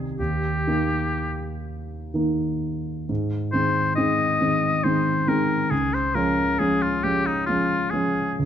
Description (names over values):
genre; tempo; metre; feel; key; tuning
classical, romantic duo for oboe and grand piano; 41-46 BPM (dotted quarters); 6/8; rubato; Ab major; A4 = 442 Hz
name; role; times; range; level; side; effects
warm concert grand piano; accompaniment; 0.0-8.5 s; C2 to Eb4; -23 LUFS; right 1 dB; none
warm oboe; melody; 0.2-8.4 s; Eb4 to Eb5; -24 LUFS; left 3 dB; none
room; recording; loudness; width
moderate recital hall reverb, RT60 1.4 s; dark, warm production; -21 LUFS; side -9 dB against mid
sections
0.0-3.1 A section; 3.1-8.5 B section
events
none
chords
0.2 Eb; 3.1 Ab; 5.7 Db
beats
| 0.19 1.65 | 3.09 4.41 | 5.72 7.04 | 8.38